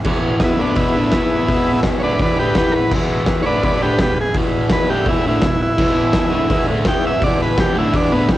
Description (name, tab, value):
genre	garage rock duo or trio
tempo	167 BPM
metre	4/4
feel	straight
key	E major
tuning	A4 = 440 Hz
part	combo organ	sustained chords	0.0-8.4 s	G#4 to F#5	-30 LUFS	equal	lush chorus, cassette tape
part	fuzz guitar	riff	0.0-8.4 s	E2 to E4	-19 LUFS	equal	distortion, cassette tape
part	oversized low-tuned drum kit	drums	0.0-8.4 s	crash cymbal, hi-hat, kick drum, snare drum	-19 LUFS	equal	vintage 12-bit sampler grit, cassette tape
part	combo organ	melody	0.4-8.4 s	G3 to G5	-19 LUFS	equal	cassette tape
room	light reverb, studio reverb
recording	home recording on cassette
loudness	-14 LUFS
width	side -14 dB against mid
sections	0.0-8.4 A section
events	transistor combo organ solo 0.0-8.4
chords	0.0 E